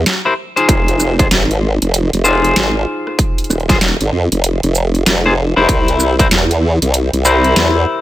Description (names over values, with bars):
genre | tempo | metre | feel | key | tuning
glitch hop | 96 BPM | 4/4 | swing 62% on 16ths | F minor | A4 = 439 Hz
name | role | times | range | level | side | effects
formant-sweep wobble bass | bass | 0.0-7.9 s | Eb1 to F2 | -14 LUFS | equal | chorus, tube saturation
dubstep drum kit | drums | 0.1-7.7 s | hi-hat, rim click, shaker, snare drum | -16 LUFS | equal | overdrive
clean electric guitar | stabs | 0.3-8.0 s | Eb4 to C5 | -16 LUFS | left 2 dB | sidechain pumping, digital delay
electronic kick drum | drums | 0.7-6.3 s | none | -15 LUFS | equal | overdrive
room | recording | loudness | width
little or no reverb | none | -11 LUFS | side -14 dB against mid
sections
0.0-8.0 A section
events
none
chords
0.0 C7